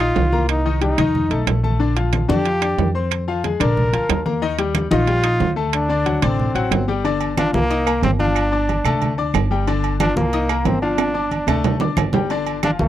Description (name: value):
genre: latin, salsa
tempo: 183 BPM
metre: 4/4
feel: straight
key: G minor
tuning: A4 = 442 Hz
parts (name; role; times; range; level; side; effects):
- brilliant trombone; melody; 0.0-12.9 s; Bb3 to Bb4; -21 LUFS; equal; none
- bright grand piano; accompaniment; 0.0-12.9 s; D3 to Eb6; -23 LUFS; left 6 dB; none
- upright bass; bass; 0.0-12.9 s; G1 to F2; -22 LUFS; equal; none
- claves; percussion; 0.0-12.8 s; none; -29 LUFS; right 28 dB; none
- congas; percussion; 0.0-12.9 s; none; -25 LUFS; equal; none
- timbales and agogo bells; percussion; 0.2-12.8 s; none; -25 LUFS; right 12 dB; none
room: little or no reverb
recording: dry, close 1970s-style studio recording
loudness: -16 LUFS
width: side -12 dB against mid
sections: 0.0-7.0 A section; 7.0-12.9 B section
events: drum fill 11.0-12.3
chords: 0.5 Cm7; 1.1 B7#11; 1.8 Bb; 3.1 Fm; 3.8 Bb; 4.4 Ebmaj9; 5.7 D7; 7.0 G5; 7.7 Cm7; 8.4 G5; 9.0 Dsus4; 9.7 G5; 10.3 Cm7; 11.0 G5; 11.6 Dsus4; 12.3 G5